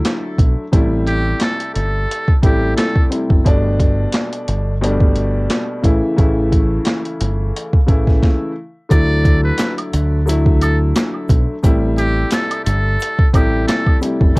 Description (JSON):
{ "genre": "hip hop, boom-bap hip-hop", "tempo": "88 BPM", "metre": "4/4", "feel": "swing 54% on 16ths", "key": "unclear", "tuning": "A4 = 440 Hz", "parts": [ { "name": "dark grand piano", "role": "accompaniment", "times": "0.0-14.4 s", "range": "B2 to E4", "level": "-20 LUFS", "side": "left 1 dB", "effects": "cassette tape, high-pass filter, low-pass filter" }, { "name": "boom bap sampler-style drum kit", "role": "drums", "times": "0.1-14.4 s", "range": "handclaps, hi-hat, kick drum, snare drum", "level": "-14 LUFS", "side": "equal", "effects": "overdrive, cassette tape" }, { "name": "deep dub fingered electric bass", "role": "bass", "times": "0.4-14.4 s", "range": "F#1 to D2", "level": "-17 LUFS", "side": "equal", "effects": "none" }, { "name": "trumpet with metal mute", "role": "melody", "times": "1.1-3.1, 8.9-14.0 s", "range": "G4 to D5", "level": "-22 LUFS", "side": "equal", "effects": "high-pass filter, low-pass filter" }, { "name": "egg shaker and woodblock", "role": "percussion", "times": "8.9-14.4 s", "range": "none", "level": "-30 LUFS", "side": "right 3 dB", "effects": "none" } ], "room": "little or no reverb", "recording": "home recording on cassette", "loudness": "-13 LUFS", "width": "side -26 dB against mid", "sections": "0.0-8.9 A section; 8.9-14.4 B section", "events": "stop 8.2-8.9", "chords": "0.0 Dadd9; 0.7 Am7; 3.5 Gadd9; 5.8 A; 8.9 Dadd9; 11.6 Am7", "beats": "0.05 | 0.73 1.41 2.09 2.77 | 3.46 4.14 4.82 5.50 | 6.18 6.86 7.55 8.23 | 8.91 9.59 10.27 10.96 | 11.64 12.32 13.00 13.68 | 14.36" }